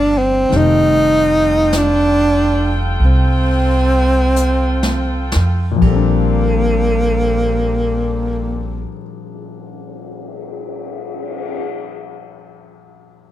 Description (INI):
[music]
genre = jazz ballad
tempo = 40-52 BPM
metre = 4/4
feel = swing 68% on 8ths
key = Bb major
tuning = A4 = 439 Hz
[part]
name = breathy tenor saxophone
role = melody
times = 0.0-8.9 s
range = Bb3 to Eb4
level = -15 LUFS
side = right 1 dB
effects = none
[part]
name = warm grand piano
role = accompaniment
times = 0.0-13.3 s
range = Bb2 to A4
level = -22 LUFS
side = left 7 dB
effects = none
[part]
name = warm saxophone section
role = sustained chords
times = 0.0-8.9 s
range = Bb3 to G5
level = -27 LUFS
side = equal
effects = none
[part]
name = upright bass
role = bass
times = 0.0-8.8 s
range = F1 to F2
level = -17 LUFS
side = equal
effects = none
[part]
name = jazz brush drum kit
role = drums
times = 0.5-11.6 s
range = brushed snare drum, cymbal swell, hi-hat, kick drum, ride cymbal, snare drum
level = -26 LUFS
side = left 2 dB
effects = none
[sound]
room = little or no reverb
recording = close, detailed microphones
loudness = -13 LUFS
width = side -12 dB against mid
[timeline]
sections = 0.0-5.8 A section; 5.8-11.8 B section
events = slowing down 0.0-5.8; drum fill 4.4-5.8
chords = 0.0 Cm11; 0.5 F9; 5.8 Bbmaj13